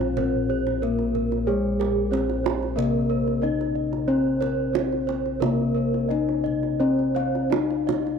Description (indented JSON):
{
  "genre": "Javanese gamelan",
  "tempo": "82-92 BPM",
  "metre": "4/4",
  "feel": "straight",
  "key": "unclear",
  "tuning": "A4 = 439 Hz",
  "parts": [
    { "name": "gamelan-type bronze metallophone", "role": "melody", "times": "0.0-8.2 s", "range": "Ab3-45c to Eb4-35c", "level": "-26 LUFS", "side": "left 5 dB", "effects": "none" },
    { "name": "gamelan-type bronze metallophone", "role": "arpeggios", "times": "0.0-8.2 s", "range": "Ab4-45c to Eb5-35c", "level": "-29 LUFS", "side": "right 11 dB", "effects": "none" },
    { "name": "gamelan-type bossed gongs", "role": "bass", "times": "0.0-7.6 s", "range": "Bb1 to Ab4-45c", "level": "-27 LUFS", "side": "equal", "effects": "none" },
    { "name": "kendang", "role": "percussion", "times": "0.0-8.2 s", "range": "none", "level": "-31 LUFS", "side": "right 12 dB", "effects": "none" },
    { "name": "gamelan-type bossed gongs", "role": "arpeggios", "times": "0.2-7.9 s", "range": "Ab4-45c to F5+25c", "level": "-33 LUFS", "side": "left 10 dB", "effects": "tape echo" }
  ],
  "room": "moderate plate reverb, RT60 3.4 s",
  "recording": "1960s-style stereo with parts hard left and right",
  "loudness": "-21 LUFS",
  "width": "side -6 dB against mid",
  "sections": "0.0-8.2 A section",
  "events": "none",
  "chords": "none"
}